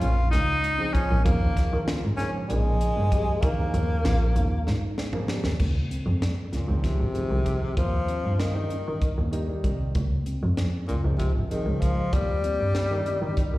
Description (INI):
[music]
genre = progressive instrumental, band music in an uneven meter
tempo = 193 BPM (eighths)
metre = 7/8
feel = straight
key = unclear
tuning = A4 = 439 Hz
[part]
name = clear tenor saxophone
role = melody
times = 0.0-13.6 s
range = Bb2 to F4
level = -28 LUFS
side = left 2 dB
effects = plate reverb, slapback echo
[part]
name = warm grand piano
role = accompaniment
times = 0.0-13.5 s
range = Db3 to C5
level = -34 LUFS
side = right 2 dB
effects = none
[part]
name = mellow tine electric piano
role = arpeggios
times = 0.0-13.6 s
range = Bb3 to Ab4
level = -38 LUFS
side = right 1 dB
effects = plate reverb, slapback echo, tape echo
[part]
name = clear double bass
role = bass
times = 0.0-13.6 s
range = Ab1 to Eb3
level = -25 LUFS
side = equal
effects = none
[part]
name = crisp fusion drum kit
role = drums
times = 0.0-13.5 s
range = crash cymbal, hi-hat, kick drum, snare drum, toms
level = -28 LUFS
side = equal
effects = none
[sound]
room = light reverb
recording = live gig heard through the venue's PA, recital hall reverb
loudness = -23 LUFS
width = side -18 dB against mid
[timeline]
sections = 0.0-5.6 A section; 5.6-13.6 B section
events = drum fill 4.7-5.6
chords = 0.0 Bbm7; 1.3 Eb7sus4; 5.6 Dbmaj7; 7.8 Eb; 10.0 Dbmaj7; 12.1 Eb